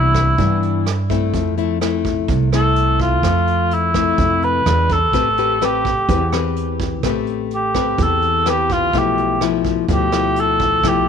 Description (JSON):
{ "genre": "bossa nova", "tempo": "126 BPM", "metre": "4/4", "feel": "straight", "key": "unclear", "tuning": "A4 = 438 Hz", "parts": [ { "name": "mellow cor anglais", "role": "melody", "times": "0.0-11.1 s", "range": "E4 to B4", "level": "-18 LUFS", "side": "right 1 dB", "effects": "tape echo" }, { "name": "nylon-string guitar", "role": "accompaniment", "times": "0.0-11.1 s", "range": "G2 to B4", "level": "-20 LUFS", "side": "left 12 dB", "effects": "none" }, { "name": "upright bass", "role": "bass", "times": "0.0-11.1 s", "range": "A1 to G2", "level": "-21 LUFS", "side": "right 2 dB", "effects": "none" }, { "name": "vintage brush drum kit", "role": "drums", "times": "0.1-10.9 s", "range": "hi-hat, kick drum, rim click", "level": "-25 LUFS", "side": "right 6 dB", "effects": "none" } ], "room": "small room ambience", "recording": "1960s-style stereo with parts hard left and right", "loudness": "-15 LUFS", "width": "side -7 dB against mid", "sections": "0.0-11.1 A section", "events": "cor anglais solo 0.0-11.1", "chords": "0.0 Cmaj9; 1.3 Fmaj7; 4.7 E7b9; 5.1 Am9; 8.9 G13/B" }